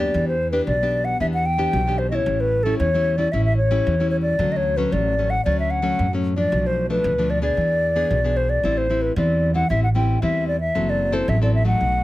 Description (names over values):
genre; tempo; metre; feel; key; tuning
samba and choro; 113 BPM; 4/4; straight; E minor; A4 = 438 Hz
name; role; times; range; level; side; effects
hollow wooden flute; melody; 0.0-12.0 s; A4 to G5; -22 LUFS; left 1 dB; none
nylon-string guitar; accompaniment; 0.0-12.0 s; F#2 to A4; -24 LUFS; left 2 dB; none
upright bass; bass; 0.0-12.0 s; F#1 to F#2; -23 LUFS; right 1 dB; none
room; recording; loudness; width
light reverb; close, detailed microphones; -18 LUFS; side -16 dB against mid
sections
0.1-12.0 A section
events
none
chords
0.1 Em7; 2.3 A7; 4.4 Dmaj7; 6.5 Bm7b5; 7.6 E7; 8.6 Am7; 10.8 F#m7b5